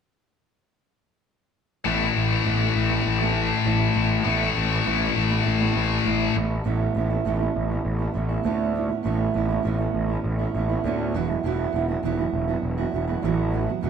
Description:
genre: rock.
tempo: 100 BPM.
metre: 4/4.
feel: straight.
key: A major.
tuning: A4 = 440 Hz.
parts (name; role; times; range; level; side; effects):
fingerpicked steel-string acoustic guitar; arpeggios; 1.8-13.9 s; E2 to F#4; -27 LUFS; right 8 dB; none.
scooped high-gain guitar; riff; 1.8-6.3 s; A2 to A3; -21 LUFS; left 5 dB; distortion.
fuzz picked electric bass; bass; 1.9-13.9 s; E1 to D2; -26 LUFS; equal; overdrive.
room: wet stone room reverb, RT60 1.0 s.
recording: band playing live in one room.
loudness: -21 LUFS.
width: side -7 dB against mid.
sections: 1.9-6.7 A section; 6.7-13.9 B section.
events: none.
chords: 1.9 Aadd9; 11.1 Esus2.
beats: | 1.87 2.47 3.07 3.67 | 4.27 4.87 5.47 6.07 | 6.66 7.26 7.86 8.46 | 9.05 9.65 10.25 10.85 | 11.45 12.04 12.64 13.24 | 13.84.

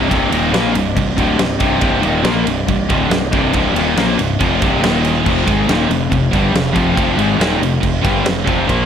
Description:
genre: heavy metal.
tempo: 140 BPM.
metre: 4/4.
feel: straight.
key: unclear.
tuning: A4 = 440 Hz.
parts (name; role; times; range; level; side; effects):
muted studio string section; sustained chords; 0.0-8.9 s; Eb3 to Bb5; -28 LUFS; equal; none.
distorted electric guitar; riff; 0.0-8.9 s; C2 to Bb3; -19 LUFS; left 9 dB; distortion.
overdriven electric guitar; riff; 0.0-8.9 s; C2 to Bb3; -22 LUFS; equal; none.
scooped high-gain guitar; riff; 0.0-8.9 s; C2 to Bb3; -20 LUFS; right 9 dB; distortion.
overdriven picked electric bass; bass; 0.0-8.9 s; C1 to Bb1; -21 LUFS; right 1 dB; none.
big rock drum kit; drums; 0.1-8.8 s; crash cymbal, kick drum, ride cymbal, snare drum; -19 LUFS; right 1 dB; none.
room: light reverb.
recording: none.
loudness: -13 LUFS.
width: side -8 dB against mid.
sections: 0.0-8.9 A section.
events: none.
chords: 0.0 Cm; 4.8 Eb5; 5.2 F5.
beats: | 0.10 0.53 0.96 1.39 | 1.82 2.25 2.67 3.10 | 3.53 3.96 4.39 4.82 | 5.25 5.68 6.11 6.54 | 6.96 7.39 7.82 8.25 | 8.68.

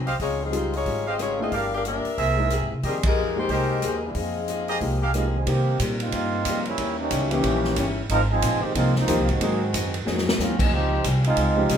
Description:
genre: jazz, big band swing.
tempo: 183 BPM.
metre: 4/4.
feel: swing 62% on 8ths.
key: F minor.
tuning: A4 = 440 Hz.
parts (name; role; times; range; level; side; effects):
picked steel-string acoustic guitar; accompaniment; 0.0-11.8 s; G2 to G#4; -33 LUFS; left 4 dB; none.
upright bass; bass; 0.0-11.8 s; G1 to C3; -26 LUFS; equal; none.
clear trumpet section; stabs; 0.1-5.1 s; G4 to F5; -28 LUFS; right 3 dB; none.
swinging big-band drum kit; drums; 0.1-11.8 s; crash cymbal, hi-hat, kick drum, ride cymbal, rim click, snare drum; -29 LUFS; equal; none.
warm saxophone section; melody; 0.2-5.3 s; Eb3 to F5; -27 LUFS; left 4 dB; none.
warm baby grand piano; accompaniment; 0.5-11.7 s; Fb3 to Ab4; -28 LUFS; left 1 dB; none.
warm trombone section; second line; 5.2-11.8 s; Eb3 to Bb4; -25 LUFS; right 2 dB; none.
room: moderate large studio reverb, RT60 1.2 s.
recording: minimal, uncompressed stereo recording.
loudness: -21 LUFS.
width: side -8 dB against mid.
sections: 0.0-5.5 A section; 5.5-11.8 B section.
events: band accent 3.0; trombone section solo 5.5-11.8; drum fill 10.1-10.4.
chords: 0.2 Dbmaj9#11; 1.5 Gm7; 2.2 C7alt; 2.8 Fm11; 5.5 Cm7; 6.8 Eb7b9; 8.1 Ab69; 9.4 Ab7; 10.7 Dbmaj9#11.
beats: | 0.20 0.53 0.86 1.19 | 1.52 1.85 2.18 2.50 | 2.83 3.17 3.49 3.82 | 4.15 4.48 4.81 5.14 | 5.47 5.80 6.13 6.45 | 6.78 7.11 7.44 7.77 | 8.10 8.42 8.75 9.08 | 9.41 9.74 10.07 10.39 | 10.72 11.05 11.38 11.71.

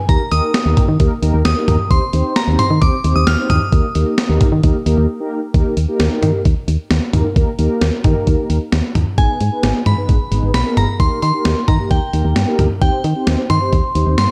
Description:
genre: synth-pop.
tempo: 132 BPM.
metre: 4/4.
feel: straight.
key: Eb major.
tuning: A4 = 440 Hz.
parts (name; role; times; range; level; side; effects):
glassy synth bell; melody; 0.0-5.0, 9.2-14.3 s; G5 to F6; -24 LUFS; equal; chorus, slapback echo.
mellow synth brass; accompaniment; 0.1-14.2 s; Bb3 to C5; -24 LUFS; equal; chorus.
solid FM bass; bass; 0.1-14.3 s; G1 to Eb3; -18 LUFS; equal; none.
boom bap sampler-style drum kit; drums; 0.1-14.3 s; hi-hat, kick drum, snare drum, toms; -19 LUFS; equal; none.
room: light reverb.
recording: dark, warm production.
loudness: -16 LUFS.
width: mono.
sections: 0.0-5.5 A section; 5.5-9.2 B section; 9.2-14.3 C section.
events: break 5.1-5.5.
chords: 0.1 Eb; 1.9 Cm/Eb; 3.7 Eb; 9.2 Abm; 11.0 Eb; 12.8 Cm/Eb.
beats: | 0.09 0.54 1.00 1.45 | 1.91 2.36 2.82 3.27 | 3.73 4.18 4.63 5.09 | 5.54 6.00 6.45 6.91 | 7.36 7.82 8.27 8.72 | 9.18 9.63 10.09 10.54 | 11.00 11.45 11.91 12.36 | 12.82 13.27 13.72 14.18.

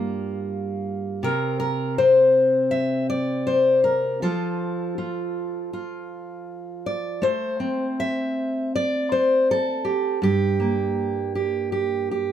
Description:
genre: folk, solo fingerstyle acoustic guitar.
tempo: 80 BPM.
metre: 4/4.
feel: straight.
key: unclear.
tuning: A4 = 442 Hz.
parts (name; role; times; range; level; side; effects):
fingerpicked steel-string acoustic guitar; solo; 0.0-12.3 s; G2 to E5; -21 LUFS; equal; none.
room: moderate studio ambience, RT60 0.5 s.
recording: none.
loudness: -20 LUFS.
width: side -10 dB against mid.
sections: 0.0-7.2 A section; 7.2-12.3 B section.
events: none.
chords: 0.0 Gm7; 1.2 N.C.; 7.2 Am; 10.2 Gm.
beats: 0.50 | 1.24 1.99 2.73 3.48 | 4.23 4.97 5.73 6.48 | 7.24 7.99 8.74 9.49 | 10.23 10.98 11.73.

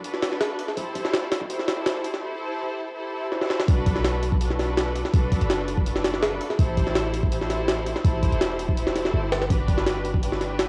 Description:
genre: drum and bass, jungle.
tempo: 165 BPM.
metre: 4/4.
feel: straight.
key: A dorian.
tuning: A4 = 440 Hz.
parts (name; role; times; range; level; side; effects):
rich studio string section; sustained chords; 0.0-10.7 s; D4 to C5; -32 LUFS; equal; cassette tape.
jungle sampler-style drum kit; drums; 0.0-10.7 s; hi-hat, kick drum, snare drum; -26 LUFS; equal; high-pass filter on hats, cassette tape, high-pass filter on snare, high-pass filter on kick, high-pass filter on room.
warm 808-style bass; bass; 3.7-10.7 s; E1 to B1; -30 LUFS; equal; tube saturation.
room: light reverb.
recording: home recording on cassette.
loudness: -24 LUFS.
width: mono.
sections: 0.0-3.7 A section; 3.7-10.7 B section.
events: build-up 0.0-3.7; drum fill 3.3-3.7; drop 3.7-10.7.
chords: 0.0 Bm7; 0.8 Am7; 3.7 Bm7; 6.6 Am7; 9.5 Gmaj7.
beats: 0.04 0.41 | 0.77 1.14 1.50 1.86 | 2.23 2.59 2.95 3.32 | 3.68 4.04 4.41 4.77 | 5.14 5.50 5.86 6.23 | 6.59 6.95 7.32 7.68 | 8.04 8.41 8.77 9.14 | 9.50 9.86 10.23 10.59.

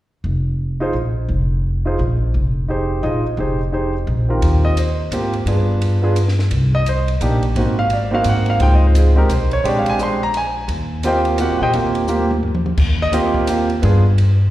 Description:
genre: jazz piano trio.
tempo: 172 BPM.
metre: 3/4.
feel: swing 62% on 8ths.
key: Eb major.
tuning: A4 = 440 Hz.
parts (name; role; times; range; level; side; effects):
upright bass; bass; 0.2-14.5 s; F1 to Bb2; -17 LUFS; equal; none.
warm concert grand piano; melody; 0.8-14.0 s; Eb3 to C6; -19 LUFS; right 1 dB; plate reverb, slapback echo.
compact cocktail drum kit; drums; 4.4-14.3 s; crash cymbal, hi-hat, kick drum, ride cymbal, snare drum, toms; -27 LUFS; equal; none.
room: light reverb.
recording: live gig heard through the venue's PA, recital hall reverb.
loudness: -15 LUFS.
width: side -14 dB against mid.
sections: 0.2-4.4 A section; 4.4-12.8 B section; 12.8-14.5 B section.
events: drum fill 12.1-12.8.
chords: 0.2 N.C.; 2.3 Fm7; 3.0 Bb7sus4; 3.4 Fm7; 4.1 Bbsus4; 4.4 Eb69; 5.5 G7b9; 6.5 Cm7; 7.6 Ab7; 8.6 Dbmaj9; 9.6 Bb13; 10.7 Eb69; 13.8 G7b9.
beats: | 0.24 0.59 0.94 | 1.28 1.63 1.98 | 2.33 2.68 3.03 | 3.38 3.73 4.07 | 4.42 4.77 5.12 | 5.47 5.82 6.16 | 6.51 6.86 7.21 | 7.55 7.90 8.25 | 8.60 8.95 9.30 | 9.64 9.99 10.34 | 10.69 11.04 11.39 | 11.74 12.09 12.43 | 12.78 13.13 13.48 | 13.83 14.18.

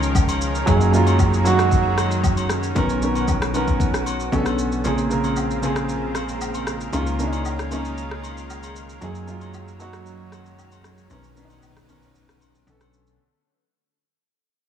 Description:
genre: amapiano.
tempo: 115 BPM.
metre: 4/4.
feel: straight.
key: unclear.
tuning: A4 = 440 Hz.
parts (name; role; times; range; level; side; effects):
warm grand piano; accompaniment; 0.0-13.2 s; Db3 to Bb4; -23 LUFS; right 4 dB; none.
lush unison pad; sustained chords; 0.0-13.2 s; Db3 to Bb4; -29 LUFS; left 2 dB; chorus.
plucky analog bass; bass; 0.0-13.2 s; Bb1 to Gb2; -24 LUFS; left 1 dB; none.
afro-pop drum kit; drums; 0.0-13.2 s; kick drum, rim click, shaker; -24 LUFS; equal; none.
woodblock and agogo bells; percussion; 0.2-12.9 s; none; -33 LUFS; left 6 dB; none.
room: light reverb.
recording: small room ambience.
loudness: -18 LUFS.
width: side -9 dB against mid.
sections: 0.0-13.2 A section.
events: fade-out 0.0-13.2.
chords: 0.0 Db69; 0.7 Gb69; 2.8 Cbmaj9; 4.3 Cbm9; 4.8 Bbm9; 6.9 Db69; 9.0 Gb69; 11.1 Cbmaj9; 12.7 Cbm9.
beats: 0.15 | 0.67 1.19 1.71 2.23 | 2.76 3.28 3.80 4.32 | 4.84 5.37 5.89 6.41 | 6.93 7.45 7.97 8.50 | 9.02 9.54 10.06 10.58 | 11.10 11.63 12.15 12.67.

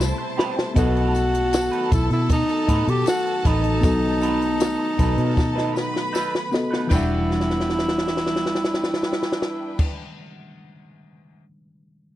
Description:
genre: lush 1970s-style soul.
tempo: 78 BPM.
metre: 4/4.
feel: straight.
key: E harmonic minor.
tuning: A4 = 440 Hz.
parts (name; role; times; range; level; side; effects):
bright studio violin section; second line; 0.0-9.9 s; D4 to B5; -31 LUFS; left 1 dB; none.
reed electric piano; accompaniment; 0.0-12.2 s; E3 to E5; -28 LUFS; left 2 dB; none.
soft string machine; sustained chords; 0.0-9.9 s; B2 to F#4; -33 LUFS; equal; ensemble chorus.
electric guitar through a small old amp; riff; 0.0-10.4 s; G3 to B4; -31 LUFS; right 5 dB; wah, vibrato effect.
vintage muted fingered electric bass; bass; 0.0-9.9 s; E1 to B2; -24 LUFS; equal; none.
compact cocktail drum kit; drums; 0.0-11.4 s; crash cymbal, hi-hat, kick drum, snare drum; -23 LUFS; equal; none.
tambourine; percussion; 0.0-9.9 s; none; -40 LUFS; left 8 dB; none.
breathy tenor saxophone; melody; 0.8-9.9 s; D#4 to G4; -24 LUFS; equal; none.
room: small room ambience.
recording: dry, close 1970s-style studio recording.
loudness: -19 LUFS.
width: side -14 dB against mid.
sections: 0.8-6.9 A section; 6.9-10.0 B section.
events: drum fill 0.0-0.8, 5.4-6.9, 7.3-9.8.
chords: 0.0 Am9; 0.8 B7; 6.9 Em9.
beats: 0.00 | 0.76 1.53 2.30 3.07 | 3.84 4.60 5.37 6.14 | 6.91 7.68 8.45 9.22.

